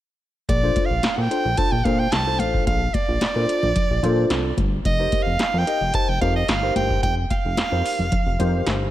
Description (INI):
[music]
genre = early-eighties boogie funk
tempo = 110 BPM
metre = 4/4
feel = straight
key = Bb major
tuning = A4 = 440 Hz
[part]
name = edgy soprano saxophone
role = melody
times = 0.5-8.9 s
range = D5 to A5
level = -24 LUFS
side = right 3 dB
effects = slapback echo
[part]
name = fat analog bass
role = bass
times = 0.5-8.9 s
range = F1 to Bb2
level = -23 LUFS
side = equal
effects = none
[part]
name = electro analog drum machine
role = drums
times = 0.5-8.8 s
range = handclaps, hi-hat, kick drum, snare drum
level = -24 LUFS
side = equal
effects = none
[part]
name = congas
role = percussion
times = 0.5-8.8 s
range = none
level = -30 LUFS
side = left 2 dB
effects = none
[part]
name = mellow tine electric piano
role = accompaniment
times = 0.6-8.9 s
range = D4 to Eb5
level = -26 LUFS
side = left 3 dB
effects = lush chorus, slapback echo
[sound]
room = light reverb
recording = none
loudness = -18 LUFS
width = side -13 dB against mid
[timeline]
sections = 0.5-8.9 A section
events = none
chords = 0.5 Bbmaj9; 4.9 F7sus4